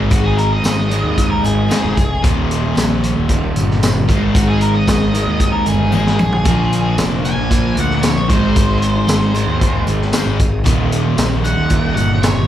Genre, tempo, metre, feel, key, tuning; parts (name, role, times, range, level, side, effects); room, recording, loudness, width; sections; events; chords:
classic rock; 114 BPM; 4/4; straight; A4 = 439 Hz
picked steel-string acoustic guitar; accompaniment; 0.0-12.5 s; Ab2 to Bb4; -26 LUFS; left 3 dB
overdriven electric guitar; riff; 0.0-12.5 s; Eb2 to Bb3; -21 LUFS; left 7 dB; slapback echo
overdriven semi-hollow guitar; riff; 0.0-12.5 s; Eb2 to Bb3; -20 LUFS; right 8 dB; slapback echo
fuzz picked electric bass; bass; 0.0-12.5 s; Eb1 to Eb2; -18 LUFS; equal; overdrive
octave-fuzz lead guitar; melody; 0.1-12.5 s; Gb4 to Ab5; -22 LUFS; equal; distortion, slapback echo, tape echo
vintage drum kit; drums; 0.1-12.4 s; hi-hat, kick drum, snare drum, tambourine, toms; -18 LUFS; equal
tambourine; percussion; 0.1-12.4 s; -38 LUFS; right 4 dB
little or no reverb; live gig heard through the venue's PA, club reverb; -13 LUFS; side -11 dB against mid
0.0-12.5 A section
lead electric guitar solo 0.0-12.5; drum fill 5.9-6.5
0.0 Ab; 2.2 Eb; 4.1 Ab; 6.5 Bb; 8.3 Ab; 10.7 Eb